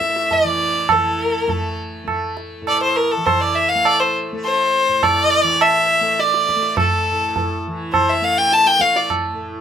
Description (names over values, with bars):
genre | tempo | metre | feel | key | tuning
indian classical, Hindustani | 102 BPM | 5/4 | straight | unclear | A4 = 441 Hz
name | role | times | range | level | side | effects
bright violin | melody | 0.0-9.1 s | A4 to A5 | -16 LUFS | left 1 dB | none
tanpura | drone | 0.0-9.6 s | A2 to A3 | -27 LUFS | equal | none
tabla | percussion | 0.0-9.3 s | none | -20 LUFS | right 4 dB | none
room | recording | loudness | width
moderate studio ambience, RT60 0.5 s | band playing live in one room | -15 LUFS | side -8 dB against mid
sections
0.9-9.6 A section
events
speeding up 0.0-9.6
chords
none